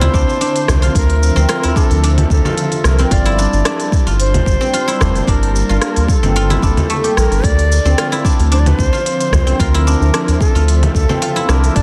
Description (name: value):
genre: organic downtempo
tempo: 111 BPM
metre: 4/4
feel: swing 53% on 16ths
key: D minor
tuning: A4 = 440 Hz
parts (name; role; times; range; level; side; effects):
- bright low Native American-style wooden flute; melody; 0.0-11.8 s; A4 to D5; -23 LUFS; equal; delay, shimmer reverb
- warm analog pad; sustained chords; 0.0-11.8 s; D3 to A5; -26 LUFS; equal; chorus, sidechain pumping, shimmer reverb
- guzheng; arpeggios; 0.0-11.8 s; A3 to G4; -23 LUFS; equal; delay, shimmer reverb
- round analog bass; bass; 0.0-11.8 s; F1 to D2; -16 LUFS; equal; none
- organic electronic drum kit; drums; 0.0-11.8 s; cabasa, congas, hi-hat, rim click; -23 LUFS; equal; soft clipping on snare
- udu; percussion; 0.0-10.4 s; none; -21 LUFS; equal; none
- electronic kick drum; drums; 0.1-11.8 s; none; -18 LUFS; equal; none
room: light reverb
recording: dense, heavily limited modern master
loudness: -14 LUFS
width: mono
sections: 0.0-11.8 A section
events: none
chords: 0.0 Dm7; 3.1 Gm9; 7.4 Dm7